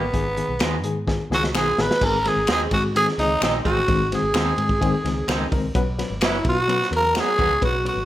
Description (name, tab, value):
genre	uptempo 1960s-style soul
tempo	128 BPM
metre	4/4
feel	straight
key	unclear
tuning	A4 = 440 Hz
part	growling tenor saxophone	melody	0.0-8.1 s	B3 to B4	-22 LUFS	equal	none
part	reed electric piano	accompaniment	0.0-8.0 s	D#3 to B4	-26 LUFS	left 4 dB	fast tremolo
part	electric guitar through a small old amp	stabs	0.0-7.5 s	F#3 to G#4	-29 LUFS	right 4 dB	none
part	vintage muted fingered electric bass	bass	0.0-8.0 s	F#1 to B2	-28 LUFS	equal	none
part	crunchy breakbeat drum kit	drums	0.1-8.0 s	crash cymbal, hi-hat, kick drum, ride cymbal, snare drum	-26 LUFS	equal	none
part	finger snaps	percussion	0.6-7.3 s	none	-30 LUFS	left 4 dB	none
part	vibraphone with soft mallets	second line	1.3-8.1 s	D#4 to B4	-30 LUFS	right 1 dB	none
room	moderate large studio reverb, RT60 0.9 s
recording	none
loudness	-18 LUFS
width	side -14 dB against mid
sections	0.0-2.0 A section; 2.0-8.1 B section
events	drum fill 1.1-2.0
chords	0.1 G#m; 2.0 G#; 5.8 Bsus2